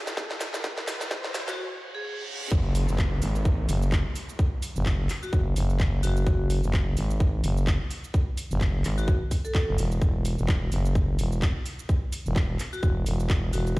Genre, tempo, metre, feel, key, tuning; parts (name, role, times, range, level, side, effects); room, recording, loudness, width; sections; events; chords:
bass house; 128 BPM; 4/4; swing 57% on 16ths; A4 = 441 Hz
riser, reverse cymbal and downlifter; sound effects; 0.0-6.3 s; -38 LUFS; right 1 dB
garage drum kit; drums; 0.1-13.8 s; handclaps, hi-hat, shaker, snare drum; -35 LUFS; equal; high-pass filter on snare, high-pass filter on perc, high-pass filter on hats, high-pass filter on room
electronic kick drum; drums; 0.2-13.8 s; -24 LUFS; equal; high-pass filter on kick, high-pass filter on room
vibraphone with hard mallets; melody; 1.5-2.1, 5.2-9.6, 12.7-13.8 s; F#4 to A4; -36 LUFS; left 1 dB; tape echo
growling FM bass; bass; 2.5-13.8 s; E1 to G#1; -25 LUFS; equal; overdrive, sidechain pumping
little or no reverb; played on a big sound system in a bare room, large studio reverb, high-pass filter; -24 LUFS; side -21 dB against mid
0.0-2.5 A section; 2.5-13.8 B section
build-up 0.0-2.5; drum fill 0.0-1.6; riser 0.0-1.6; break 1.6-2.5; reverse cymbal 1.6-2.5; drop 2.5-13.8
0.0 N.C.; 2.5 Eadd9 (rootless); 10.0 N.C.